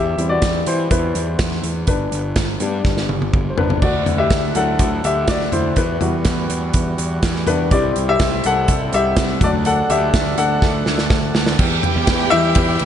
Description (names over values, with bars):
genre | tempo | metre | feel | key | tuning
piano-driven pop | 124 BPM | 4/4 | straight | unclear | A4 = 441 Hz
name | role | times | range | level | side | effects
warm baby grand piano | accompaniment | 0.0-12.9 s | E3 to F#5 | -20 LUFS | left 4 dB | slapback echo
fuzz picked electric bass | bass | 0.0-12.9 s | G1 to E3 | -22 LUFS | right 1 dB | overdrive
modern studio drum kit | drums | 0.2-12.9 s | crash cymbal, hi-hat, kick drum, ride cymbal, snare drum, toms | -19 LUFS | right 1 dB | none
hand-pumped harmonium | sustained chords | 3.8-12.9 s | C3 to F#5 | -27 LUFS | right 3 dB | none
warm studio violin section | second line | 11.6-12.9 s | E4 to G5 | -22 LUFS | right 3 dB | none
room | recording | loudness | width
light reverb, studio reverb | nothing above 10.4 kHz | -15 LUFS | side -9 dB against mid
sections
0.0-3.8 A section; 3.8-11.6 B section; 11.6-12.9 C section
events
grand piano solo 0.0-3.8, 3.8-11.6, 11.6-12.9; drum fill 2.9-3.8, 10.6-11.6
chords
0.0 C/E; 1.9 G; 3.8 Dadd9; 5.8 Emadd9; 7.7 C; 9.4 D; 11.6 Em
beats
0.42 0.91 1.39 | 1.88 2.37 2.85 3.34 | 3.83 4.31 4.80 5.28 | 5.77 6.26 6.74 7.23 | 7.71 8.20 8.68 9.17 | 9.65 10.14 10.62 11.11 | 11.59 12.07 12.56